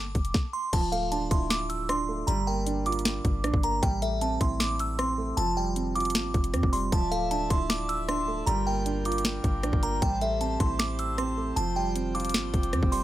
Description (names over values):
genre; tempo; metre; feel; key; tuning
hip hop, trap; 155 BPM; 4/4; half-time; D minor; A4 = 440 Hz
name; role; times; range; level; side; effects
glassy synth bell; melody; 0.0-13.0 s; E5 to E6; -30 LUFS; equal; chorus
clean 808-style bass; bass; 0.0-13.0 s; D1 to F2; -31 LUFS; equal; none
trap drum kit; drums; 0.1-13.0 s; crash cymbal, finger snaps, hi-hat, kick drum, rim click, snare drum; -28 LUFS; equal; none
dark concert grand piano; accompaniment; 0.7-13.0 s; F3 to F4; -32 LUFS; right 5 dB; none
pipe organ, foundations; sustained chords; 6.9-13.0 s; F4 to A5; -39 LUFS; left 1 dB; none
room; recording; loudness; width
little or no reverb; none; -25 LUFS; side -14 dB against mid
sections
0.7-13.0 A section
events
none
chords
0.0 Fsus2; 0.7 Dmadd9; 2.3 Gm7; 3.8 Am7; 5.4 Fsus2; 6.9 Dmadd9; 8.5 Gm7; 10.0 Am7; 11.6 Fsus2